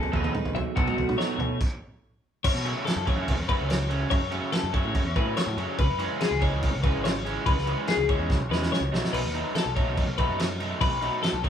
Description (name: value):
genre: math rock and midwest emo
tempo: 143 BPM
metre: 4/4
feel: straight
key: unclear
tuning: A4 = 440 Hz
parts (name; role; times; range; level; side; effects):
- electric guitar through a small old amp; accompaniment; 0.0-1.6 s; B2 to G#4; -32 LUFS; right 8 dB; none
- twelve-string electric guitar; arpeggios; 0.0-11.5 s; F#4 to E5; -29 LUFS; left 6 dB; none
- growling picked electric bass; bass; 0.0-11.5 s; G#1 to B2; -31 LUFS; right 1 dB; overdrive
- loose indie drum kit; drums; 0.0-11.5 s; crash cymbal, kick drum, snare drum, toms; -27 LUFS; right 1 dB; none
- raw garage guitar; riff; 0.1-11.5 s; B2 to A4; -31 LUFS; right 3 dB; overdrive
room: light reverb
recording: band playing live in one room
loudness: -24 LUFS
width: side -9 dB against mid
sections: 0.0-2.4 A section; 2.4-11.5 B section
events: stop 1.6-2.4; drum fill 8.3-9.1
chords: 0.0 B13; 2.4 F#m; 5.8 C#m7; 8.9 B7